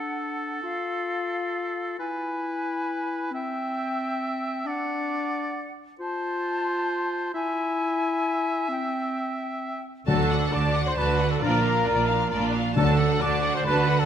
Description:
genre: cinematic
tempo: 134 BPM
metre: 3/4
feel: straight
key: unclear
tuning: A4 = 440 Hz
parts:
  - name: clear clarinet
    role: second line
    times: 0.0-14.1 s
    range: C4 to D5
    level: -31 LUFS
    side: left 2 dB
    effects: none
  - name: clear oboe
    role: second line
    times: 0.0-9.8 s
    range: A4 to E5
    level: -31 LUFS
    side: right 1 dB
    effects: none
  - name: silver concert flute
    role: second line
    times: 0.0-14.1 s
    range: F5 to D6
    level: -31 LUFS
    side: left 3 dB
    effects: none
  - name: rich studio violin section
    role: melody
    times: 10.1-14.1 s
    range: D5 to A5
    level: -31 LUFS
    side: left 2 dB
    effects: none
  - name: clear symphonic violin section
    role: second line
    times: 10.1-14.1 s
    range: D4 to F#4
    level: -34 LUFS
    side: left 2 dB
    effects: none
  - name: rich symphonic viola section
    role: accompaniment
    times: 10.1-14.1 s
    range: D4 to F#4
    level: -32 LUFS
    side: right 2 dB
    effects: none
  - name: mellow French horn section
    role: sustained chords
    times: 10.1-12.9 s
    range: F3 to D4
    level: -31 LUFS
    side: left 3 dB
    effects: none
  - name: warm trumpet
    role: stabs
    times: 10.1-14.1 s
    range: A4 to D5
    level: -28 LUFS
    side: right 2 dB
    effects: none
  - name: clear symphonic double bass section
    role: bass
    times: 10.1-14.1 s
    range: Bb1 to D2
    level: -28 LUFS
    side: right 5 dB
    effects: none
  - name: rich studio cello section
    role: bass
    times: 10.1-14.1 s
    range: Bb2 to D3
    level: -28 LUFS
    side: right 4 dB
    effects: none
  - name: timpani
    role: percussion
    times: 10.1-10.7, 12.8-13.4 s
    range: D3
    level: -28 LUFS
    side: left 3 dB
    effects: none
room: moderate concert hall reverb, RT60 1.7 s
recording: none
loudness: -24 LUFS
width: side -9 dB against mid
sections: 0.0-10.1 A section; 10.1-14.1 B section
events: build-up 0.0-10.1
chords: 0.0 D; 0.6 F; 2.0 E; 3.3 C; 4.7 D; 6.0 F; 7.3 E; 8.7 C; 10.1 D; 11.4 Bb; 12.8 D

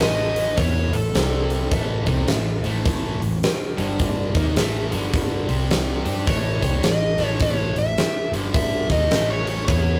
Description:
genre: blues rock power trio and southern rock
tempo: 105 BPM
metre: 4/4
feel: swing 62% on 8ths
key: unclear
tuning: A4 = 439 Hz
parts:
  - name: overdriven slide guitar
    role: melody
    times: 0.0-2.6, 6.3-10.0 s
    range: A4 to E5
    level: -27 LUFS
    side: equal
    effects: none
  - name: fuzz guitar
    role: riff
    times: 0.0-10.0 s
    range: G2 to G4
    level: -29 LUFS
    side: equal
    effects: distortion
  - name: vintage muted fingered electric bass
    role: bass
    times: 0.0-10.0 s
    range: G1 to G2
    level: -28 LUFS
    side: equal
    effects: none
  - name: huge arena drum kit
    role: drums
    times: 0.0-9.8 s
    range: hi-hat, kick drum, snare drum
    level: -25 LUFS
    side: equal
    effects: none
room: moderate studio reverb, RT60 0.6 s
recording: rough rehearsal-room recording, warm saturation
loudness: -22 LUFS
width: mono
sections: 0.0-10.0 A section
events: none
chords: 0.0 A5; 1.2 C5; 1.7 A5; 3.7 G5; 4.3 A5; 4.9 G5; 5.4 C5; 6.0 A; 8.3 G5; 8.8 A5

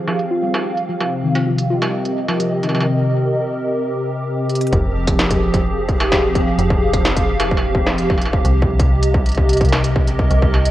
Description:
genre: IDM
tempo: 129 BPM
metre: 4/4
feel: straight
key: F minor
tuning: A4 = 440 Hz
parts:
  - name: hollow soft pad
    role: sustained chords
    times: 0.0-10.7 s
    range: C3 to F5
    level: -19 LUFS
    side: equal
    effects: ensemble chorus
  - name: harp-like synth pluck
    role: arpeggios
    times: 0.0-2.8 s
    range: Eb3 to F4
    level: -22 LUFS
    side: left 1 dB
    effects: chorus, phaser, tape echo
  - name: industrial drum kit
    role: drums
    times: 0.1-10.7 s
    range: hi-hat, snare drum, struck metal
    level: -23 LUFS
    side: right 1 dB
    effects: low-pass filter on hats, studio reverb, low-pass filter on perc, low-pass filter on snare
  - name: metallic FM bass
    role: bass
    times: 4.7-10.7 s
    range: F1 to C2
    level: -19 LUFS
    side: equal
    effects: none
  - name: electronic kick drum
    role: drums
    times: 4.7-10.5 s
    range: none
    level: -18 LUFS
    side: equal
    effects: distortion, studio reverb
room: light reverb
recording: worn, warbling old tape, cassette tape, warbly pitch drift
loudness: -15 LUFS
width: side -14 dB against mid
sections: 0.0-4.7 A section; 4.7-10.7 B section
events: filter sweep on drum 0.0-4.7; filter sweep on analog synth pad 0.0-4.7; drum fill 4.5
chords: 0.0 Fmadd9; 1.0 Cm7; 4.7 Fmadd9; 8.4 Cm7

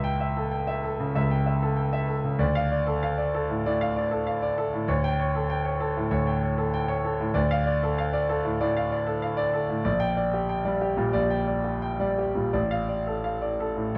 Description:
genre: classical, virtuoso piano study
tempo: 96 BPM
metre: 4/4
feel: rubato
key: D minor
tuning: A4 = 440 Hz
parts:
  - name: clear concert grand piano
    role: solo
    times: 0.0-14.0 s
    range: A1 to G5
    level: -26 LUFS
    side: equal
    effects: none
room: light reverb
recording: dark, warm production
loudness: -26 LUFS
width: mono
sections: 0.0-14.0 A section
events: none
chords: 0.0 A7/C#; 2.4 Dm; 4.9 A7/D; 7.4 Dm; 9.8 Gm/Bb; 12.5 Dm/A

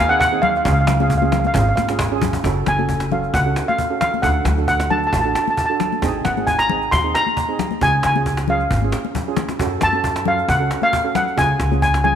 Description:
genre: calypso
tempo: 134 BPM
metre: 4/4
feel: swing 53% on 16ths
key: F# harmonic minor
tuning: A4 = 440 Hz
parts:
  - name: steel pan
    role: melody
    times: 0.0-12.2 s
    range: E#5 to B#5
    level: -19 LUFS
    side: equal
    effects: tape echo
  - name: upright bass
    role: bass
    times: 0.0-12.2 s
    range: F#1 to F#2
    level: -21 LUFS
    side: equal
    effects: none
  - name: steel pan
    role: accompaniment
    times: 0.1-12.2 s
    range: B#3 to A4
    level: -25 LUFS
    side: right 8 dB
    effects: none
  - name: cajon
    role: drums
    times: 0.1-12.1 s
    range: none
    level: -25 LUFS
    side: equal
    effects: none
  - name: congas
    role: percussion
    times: 0.4-12.2 s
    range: none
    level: -26 LUFS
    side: left 13 dB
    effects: none
room: moderate echo chamber reverb, RT60 1.9 s, small room reverb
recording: 1960s-style stereo with parts hard left and right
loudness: -16 LUFS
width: side -9 dB against mid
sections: 0.0-2.4 A section; 2.4-12.2 B section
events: drum fill 1.6-2.4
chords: 0.0 G#; 0.7 C#; 2.4 F#madd9; 4.2 D; 6.0 G#; 7.8 C#; 9.6 F#m; 11.4 C#

